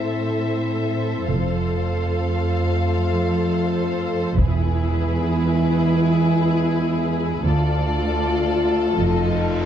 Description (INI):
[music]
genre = cinematic, epic orchestral film score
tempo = free time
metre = none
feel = none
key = unclear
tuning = A4 = 440 Hz
[part]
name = warm symphonic violin section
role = melody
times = 0.0-9.7 s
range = B4 to F5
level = -31 LUFS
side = left 5 dB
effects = none
[part]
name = warm symphonic violin section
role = second line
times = 0.0-9.7 s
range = G#4 to C5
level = -29 LUFS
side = left 4 dB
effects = none
[part]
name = rich symphonic viola section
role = accompaniment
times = 0.0-9.7 s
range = E4 to A4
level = -27 LUFS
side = equal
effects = none
[part]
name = warm French horn section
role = sustained chords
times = 0.0-9.7 s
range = G#3 to F4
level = -26 LUFS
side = left 4 dB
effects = none
[part]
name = dark symphonic cello section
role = bass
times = 0.0-9.7 s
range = D2 to A2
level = -22 LUFS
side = right 3 dB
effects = none
[part]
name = rich symphonic double bass section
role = bass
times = 1.3-9.7 s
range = E1 to D2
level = -24 LUFS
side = right 2 dB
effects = none
[part]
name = taiko ensemble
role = drums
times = 4.4-5.9 s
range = none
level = -23 LUFS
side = left 1 dB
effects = none
[part]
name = reverse cymbal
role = sound effects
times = 9.0-9.7 s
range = none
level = -38 LUFS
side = left 2 dB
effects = none
[sound]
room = moderate scoring stage reverb, RT60 2.1 s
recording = dark, warm production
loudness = -18 LUFS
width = side -9 dB against mid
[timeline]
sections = 0.0-9.7 A section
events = reverse cymbal 9.0-9.7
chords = 0.0 Am; 1.3 F; 4.4 E; 7.5 Dm; 9.0 F7